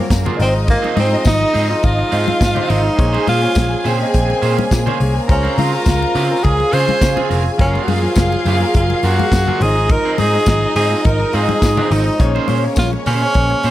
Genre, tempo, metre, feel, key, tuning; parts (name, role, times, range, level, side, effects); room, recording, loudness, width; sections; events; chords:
disco; 104 BPM; 4/4; straight; A4 = 443 Hz
breathy tenor saxophone; melody; 0.0-13.7 s; Bb3 to C5; -18 LUFS; right 1 dB
dark studio string section; second line; 0.0-13.7 s; Bb3 to Bb5; -22 LUFS; equal
clear grand piano; accompaniment; 0.0-13.7 s; Db3 to F5; -25 LUFS; left 2 dB
electric guitar at the edge of break-up; accompaniment; 0.0-13.7 s; Bb3 to C5; -25 LUFS; right 8 dB
warm French horn section; sustained chords; 0.0-13.7 s; Db3 to F5; -28 LUFS; equal
picked electric bass; bass; 0.1-13.7 s; F1 to Db3; -18 LUFS; equal
modern studio drum kit; drums; 0.1-13.7 s; hi-hat, kick drum, snare drum; -20 LUFS; equal
congas; percussion; 0.1-13.6 s; -25 LUFS; left 6 dB
tambourine; percussion; 0.1-12.9 s; -32 LUFS; left 8 dB
light reverb, small room ambience; -13 LUFS; side -14 dB against mid
0.0-13.7 A section
0.4 Fm7/Ab; 3.0 Bbm9; 5.3 Dbmaj7; 7.6 Gbmaj9; 9.6 Fm7/Ab; 12.2 Bbm9